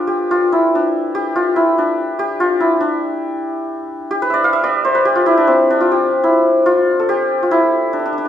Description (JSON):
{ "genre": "indian classical", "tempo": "142 BPM", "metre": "3/4", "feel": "straight", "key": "D raga bageshri", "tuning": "A4 = 445 Hz", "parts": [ { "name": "santur", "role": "solo", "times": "0.0-8.3 s", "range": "C4 to F5", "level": "-13 LUFS", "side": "left 1 dB", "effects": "none" } ], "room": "wet recital hall reverb, RT60 1.5 s", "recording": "small room ambience", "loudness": "-13 LUFS", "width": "side -10 dB against mid", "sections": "0.0-2.8 A section; 2.8-8.3 B section", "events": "none", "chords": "none", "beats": "| 0.29 0.72 1.15 | 1.57 2.00 2.42 | 2.85 3.27 3.70 | 4.12 4.54 4.96 | 5.38 5.81 6.23 | 6.65 7.07 7.49 | 7.90" }